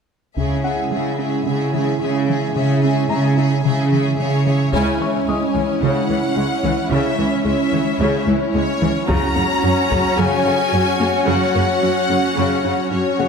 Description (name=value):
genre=cinematic, hybrid orchestral and electronic film score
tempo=110 BPM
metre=4/4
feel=straight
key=C# dorian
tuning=A4 = 440 Hz
part: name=rich studio violin section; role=second line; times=0.4-13.3 s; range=E4 to E5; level=-25 LUFS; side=left 3 dB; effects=none
part: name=airy breathy pad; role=sustained chords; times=0.4-13.3 s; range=F#3 to C#5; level=-22 LUFS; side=equal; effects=chorus
part: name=resonant blip pluck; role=arpeggios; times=0.4-13.3 s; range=C#3 to C#4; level=-26 LUFS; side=left 1 dB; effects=phaser, digital delay
part: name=clear symphonic cello section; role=bass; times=0.4-13.3 s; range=C#2 to C#3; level=-21 LUFS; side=right 3 dB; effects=none
part: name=taiko ensemble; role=drums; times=0.4-1.4, 4.7-5.8, 9.1-10.2 s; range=none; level=-25 LUFS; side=left 1 dB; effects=none
part: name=clear grand piano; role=texture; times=0.6-13.3 s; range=G#4 to D#6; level=-31 LUFS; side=left 2 dB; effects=digital delay
part: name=clear studio violin section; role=melody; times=4.2-13.3 s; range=C#5 to A#5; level=-24 LUFS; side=left 3 dB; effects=none
part: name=rich symphonic viola section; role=accompaniment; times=4.7-13.3 s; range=C#3 to C#4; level=-22 LUFS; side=equal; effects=none
room=moderate scoring stage reverb, RT60 1.6 s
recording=none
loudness=-16 LUFS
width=side -6 dB against mid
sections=0.4-4.7 A section; 4.7-13.3 B section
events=band accent 4.7-5.3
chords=0.4 C#m; 9.1 F#